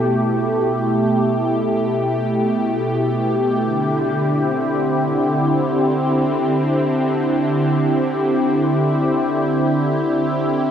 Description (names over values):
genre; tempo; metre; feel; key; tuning
ambient; free time; none; none; unclear; A4 = 439 Hz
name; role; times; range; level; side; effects
warm analog pad; solo; 0.0-10.7 s; B2 to G4; -16 LUFS; equal; chorus, tape echo
room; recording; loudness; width
wet cathedral reverb, RT60 5.9 s; in a vast, echoing space, cassette tape; -16 LUFS; side -8 dB against mid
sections
0.0-10.7 A section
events
none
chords
0.0 G69; 3.6 D9sus4